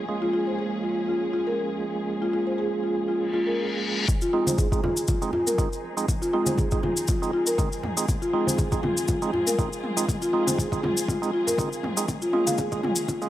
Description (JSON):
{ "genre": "afro house", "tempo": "120 BPM", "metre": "4/4", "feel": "swing 54% on 16ths", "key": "F minor", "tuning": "A4 = 440 Hz", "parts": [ { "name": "dark studio string section", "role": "sustained chords", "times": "0.0-13.3 s", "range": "F3 to Ab4", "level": "-35 LUFS", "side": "left 2 dB", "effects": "sidechain pumping, low-pass filter" }, { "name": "percussive tonewheel organ", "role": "stabs", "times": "0.0-13.3 s", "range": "Ab3 to Ab4", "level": "-30 LUFS", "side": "right 4 dB", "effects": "chorus vibrato, sidechain pumping, tape echo" }, { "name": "buzzing marimba with soft mallets", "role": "arpeggios", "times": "0.2-13.2 s", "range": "F4 to F5", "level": "-26 LUFS", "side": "left 1 dB", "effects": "sidechain pumping, tape echo" }, { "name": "reverse cymbal", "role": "sound effects", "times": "3.3-4.1 s", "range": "none", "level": "-30 LUFS", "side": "left 4 dB", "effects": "none" }, { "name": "electronic kick drum", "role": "drums", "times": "4.1-13.2 s", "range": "none", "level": "-26 LUFS", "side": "equal", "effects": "overdrive" }, { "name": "electronic toms", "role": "drums", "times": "4.1-13.2 s", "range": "none", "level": "-35 LUFS", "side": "left 2 dB", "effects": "overdrive, low-pass filter on toms" }, { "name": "cabasa", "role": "percussion", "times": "4.1-13.3 s", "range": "none", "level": "-30 LUFS", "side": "left 2 dB", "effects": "none" }, { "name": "congas", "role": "percussion", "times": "4.5-13.2 s", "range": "none", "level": "-33 LUFS", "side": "equal", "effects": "none" } ], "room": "light reverb, studio reverb", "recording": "dry, gritty hardware recording, high-pass filter", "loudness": "-23 LUFS", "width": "side -13 dB against mid", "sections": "0.0-4.1 A section; 4.1-13.3 B section", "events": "filter sweep on tonewheel organ 0.0-4.1; reverse cymbal 3.3-4.1; build-up 4.1-13.3; drum fill 4.1-13.3; filter sweep on string section 4.1-13.3", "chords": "0.0 Bbm7; 4.1 Fm7; 12.1 Bbm7" }